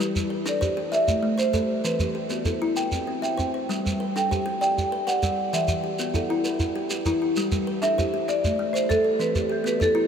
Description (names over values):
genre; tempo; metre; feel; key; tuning
southern african traditional, mbira-style interlocking cycle; 131 BPM (dotted quarters); 12/8; straight; G major; A4 = 439 Hz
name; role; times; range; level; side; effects
buzzing kalimba; arpeggios; 0.0-10.1 s; E3 to G5; -30 LUFS; right 4 dB; diffuse ambient delay
kalimba; arpeggios; 0.0-10.1 s; E3 to G5; -28 LUFS; left 4 dB; none
shekere; percussion; 0.0-10.0 s; none; -30 LUFS; right 1 dB; none
marimba with medium hard mallets; melody; 0.5-10.1 s; G4 to G5; -26 LUFS; right 1 dB; diffuse ambient delay
room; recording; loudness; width
wet huge ambient reverb, RT60 8.5 s; dreamy mix soaked in reverb; -22 LUFS; side -7 dB against mid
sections
0.0-10.1 A section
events
none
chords
0.0 G; 0.9 Am; 1.8 Em; 2.8 C; 3.7 G; 5.5 Em; 7.4 G; 8.3 Am; 9.2 Em